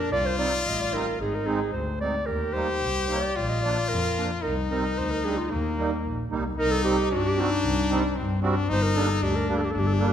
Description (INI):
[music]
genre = klezmer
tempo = 112 BPM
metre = 2/4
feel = straight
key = Eb major, C dorian sharp4 from 6.6 s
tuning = A4 = 436 Hz
[part]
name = warm clarinet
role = melody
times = 0.0-10.1 s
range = Eb4 to Eb5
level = -28 LUFS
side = right 2 dB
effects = none
[part]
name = clear trumpet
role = second line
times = 0.0-10.1 s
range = Bb3 to G4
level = -28 LUFS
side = left 5 dB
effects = none
[part]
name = rich double bass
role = bass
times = 0.1-10.1 s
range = G1 to G2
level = -28 LUFS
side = equal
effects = none
[part]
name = musette accordion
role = accompaniment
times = 0.4-10.1 s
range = F3 to F#4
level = -31 LUFS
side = right 5 dB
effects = none
[sound]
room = moderate recital hall reverb, RT60 1.4 s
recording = none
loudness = -23 LUFS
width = side -9 dB against mid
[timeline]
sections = 0.0-6.6 A section; 6.6-10.1 B section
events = speeding up 0.0-10.1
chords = 0.1 Cm; 1.2 Ab; 2.3 Eb; 3.4 Bb; 4.4 Cm; 5.5 Eb; 6.6 Cm; 8.7 Gm